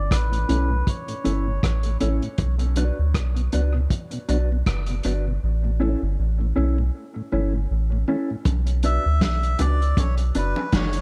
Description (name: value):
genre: dub reggae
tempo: 79 BPM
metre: 4/4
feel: swing 56% on 16ths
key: B minor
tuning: A4 = 440 Hz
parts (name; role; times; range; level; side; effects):
- melodica; melody; 0.0-2.0, 8.8-11.0 s; B4 to E5; -32 LUFS; equal; low-pass filter, dub echo
- soft dub sub bass; bass; 0.0-11.0 s; F#1 to D2; -24 LUFS; equal; none
- vintage drum kit; drums; 0.1-11.0 s; hi-hat, kick drum, rim click, snare drum; -27 LUFS; equal; none
- mellow tonewheel organ; accompaniment; 0.3-8.4 s; A2 to D4; -34 LUFS; equal; slow rotary speaker, low-pass filter, dub echo
- mellow electric guitar; accompaniment; 0.5-10.6 s; C#4 to D5; -32 LUFS; equal; low-pass filter, dub echo
- bongos; percussion; 8.5-10.7 s; none; -35 LUFS; equal; dub echo
room: light reverb, small room ambience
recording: none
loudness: -23 LUFS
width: mono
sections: 0.0-8.5 A section; 8.5-11.0 B section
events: part muted 5.4-8.5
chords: 0.0 A; 2.4 Bm; 5.4 A; 8.5 Bm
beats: 0.11 0.87 1.63 | 2.39 3.15 3.90 4.67 | 5.42 6.18 6.94 7.70 | 8.46 9.22 9.98 10.73